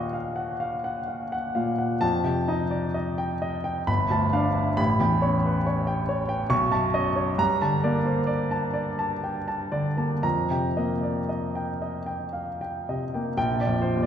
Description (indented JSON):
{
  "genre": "classical, impressionist solo piano",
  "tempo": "55-71 BPM",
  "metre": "3/4",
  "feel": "rubato",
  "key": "unclear",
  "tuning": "A4 = 440 Hz",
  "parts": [
    { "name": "clear grand piano", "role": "solo", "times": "0.0-14.1 s", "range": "G1 to Db6", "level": "-23 LUFS", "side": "equal", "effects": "none" }
  ],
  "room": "wet recital hall reverb, RT60 1.8 s",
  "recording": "recorded in a church or concert hall",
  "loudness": "-23 LUFS",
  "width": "side -8 dB against mid",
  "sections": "0.0-13.4 A section",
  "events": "none",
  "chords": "0.0 Ebm9; 2.0 F9; 3.9 G9; 4.8 A9; 6.5 B9; 7.4 Gmadd9; 10.2 F9sus4; 13.4 Bb69"
}